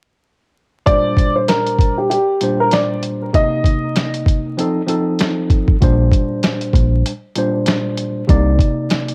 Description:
hip hop, boom-bap hip-hop; 97 BPM; 4/4; swing 60% on 16ths; Bb major; A4 = 440 Hz
dark upright piano; melody; 0.9-4.1 s; G4 to Eb5; -20 LUFS; equal; high-pass filter, low-pass filter, cassette tape, tape echo
tine electric piano; accompaniment; 0.9-9.1 s; Bb2 to Eb5; -22 LUFS; equal; cassette tape, high-pass filter, low-pass filter
dusty soul sampler-style drum kit; drums; 0.9-9.1 s; hi-hat, kick drum, snare drum; -18 LUFS; equal
deep dub fingered electric bass; bass; 5.8-8.6 s; Bb1 to C2; -16 LUFS; equal
light reverb; home recording on cassette, vinyl crackle; -16 LUFS; mono
0.9-9.1 A section
0.9 Bb69; 3.3 Cm7; 4.6 F7; 5.8 Bb69; 8.3 Cm9
| 0.87 1.49 2.10 2.72 | 3.34 3.96 4.58 5.20 | 5.81 6.43 7.05 7.67 | 8.29 8.91

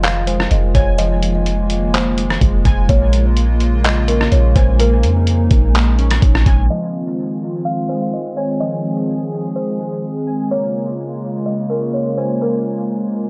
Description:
hip hop, atmospheric cloud-rap; 126 BPM; 4/4; half-time; F minor; A4 = 440 Hz
kalimba; melody; 0.0-12.9 s; Bb4 to F5; -26 LUFS; equal; dub echo
hollow soft pad; sustained chords; 0.0-13.3 s; Db3 to C5; -24 LUFS; equal; chorus, sidechain pumping
warbly lo-fi synth keys; arpeggios; 0.0-13.3 s; F3 to Ab5; -29 LUFS; equal; chorus, dub echo
clean 808-style bass; bass; 0.0-6.7 s; F1 to F2; -17 LUFS; equal
lo-fi sampler-style drum kit; drums; 0.0-6.6 s; handclaps, hi-hat, kick drum, rim click; -20 LUFS; equal; dub echo
little or no reverb; echo-heavy mix, low-pass filter, nothing above 10.4 kHz; -16 LUFS; mono
0.0-6.7 A section; 6.7-13.3 B section
0.0 Fm7; 2.9 Bbm7; 6.7 Fm7; 10.5 Bbm7
0.03 0.51 | 0.99 1.46 1.94 2.42 | 2.89 3.37 3.84 4.32 | 4.80 5.27 5.75 6.22 | 6.70 7.18 7.65 8.13 | 8.61 9.08 9.56 10.03 | 10.51 10.99 11.46 11.94 | 12.41 12.89

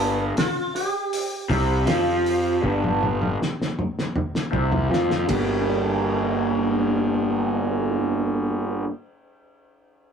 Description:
psychedelic rock; 79 BPM; 4/4; straight; G minor; A4 = 440 Hz
sitar; melody; 0.0-4.9 s; Bb3 to G4; -30 LUFS; right 1 dB; low-pass filter
raw garage guitar; riff; 0.0-8.9 s; G2 to G4; -22 LUFS; right 1 dB; overdrive, phaser, low-pass filter
fuzz fingered electric bass; bass; 0.0-8.8 s; G1 to F2; -25 LUFS; equal; overdrive
cloth-damped thuddy drum kit; drums; 0.0-5.5 s; hi-hat, kick drum, ride cymbal, snare drum, toms; -27 LUFS; equal
moderate small room reverb, RT60 0.5 s; rough rehearsal-room recording; -21 LUFS; side -7 dB against mid
0.0-5.7 A section; 5.7-8.7 B section
filter sweep 0.0-5.7; drum fill 2.6-5.7
0.0 G7(no3); 5.3 Gm
0.35 1.11 1.87 | 2.63 3.39 4.15 4.91 | 5.67 6.43 7.20 7.96

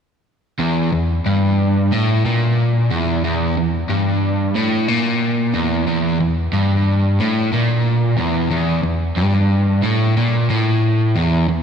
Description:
rock; 91 BPM; 4/4; straight; A4 = 442 Hz
overdriven semi-hollow guitar; solo; 0.6-11.6 s; E2 to Bb2; -15 LUFS; equal; spring reverb
wet lush hall reverb, RT60 3.0 s; big arena sound; -15 LUFS; side -7 dB against mid
0.6-11.6 A section
| 0.59 1.25 1.91 2.57 | 3.23 3.89 4.55 5.21 | 5.87 6.53 7.19 7.85 | 8.51 9.17 9.83 10.49 | 11.15

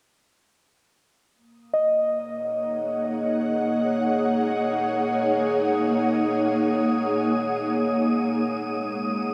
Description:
ambient; free time; Eb minor; A4 = 441 Hz
ethereal airy pad; sustained chords; 2.3-9.3 s; Ab3 to Gb5; -25 LUFS; equal; ensemble chorus, built-in reverb
wind-like tuned noise texture; texture; 2.6-9.3 s; Eb6; -37 LUFS; equal; built-in reverb
muted felt-like synth keys; arpeggios; 1.7-8.3 s; Eb5; -30 LUFS; equal; chorus, delay
wet cathedral reverb, RT60 5.0 s; -24 LUFS; mono
1.3-9.3 A section
fade-in on synth texture 1.3-9.3
1.3 Ebm; 8.2 Abm
free time

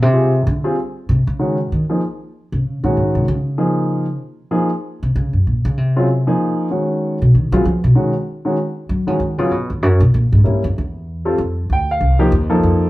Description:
modal jazz; 192 BPM; 4/4; swing 62% on 8ths; Ab mixolydian; A4 = 440 Hz
upright bass; bass; 0.0-12.9 s; C2 to Gb3; -15 LUFS; equal
warm grand piano; accompaniment; 0.1-12.9 s; Db3 to G5; -18 LUFS; equal
moderate large studio reverb, RT60 0.9 s; band playing live in one room; -15 LUFS; side -18 dB against mid
0.0-1.4 A section; 1.4-11.4 A section; 11.4-12.9 A section
upright bass solo 0.0-11.4
0.0 Bb7sus2 (rootless); 1.4 Ab9sus4; 6.4 Db9sus4; 10.1 C7b9 (rootless); 11.4 F9sus4
| 0.14 0.45 0.76 1.07 | 1.39 1.70 2.01 2.32 | 2.64 2.95 3.26 3.58 | 3.89 4.20 4.51 4.83 | 5.14 5.45 5.76 6.08 | 6.39 6.70 7.01 7.33 | 7.64 7.95 8.26 8.57 | 8.89 9.20 9.51 9.82 | 10.13 10.45 10.76 11.07 | 11.38 11.69 12.01 12.32 | 12.63

